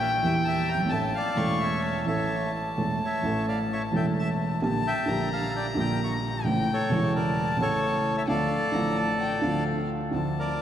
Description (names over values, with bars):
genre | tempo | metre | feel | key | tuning
tango | 130 BPM | 4/4 | rubato | D harmonic minor | A4 = 440 Hz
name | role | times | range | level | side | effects
bandoneon | melody | 0.0-10.6 s | A4 to C#6 | -30 LUFS | equal | none
warm violin | second line | 0.0-10.6 s | F5 to C#6 | -30 LUFS | left 2 dB | none
warm baby grand piano | accompaniment | 0.0-10.6 s | E1 to A4 | -26 LUFS | right 1 dB | none
room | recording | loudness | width
wet cathedral reverb, RT60 5.0 s | in a vast, echoing space | -24 LUFS | side -10 dB against mid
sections
0.0-10.1 A section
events
none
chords
0.0 Edim; 0.9 A; 4.6 Gm/Bb; 6.5 A; 8.3 Dm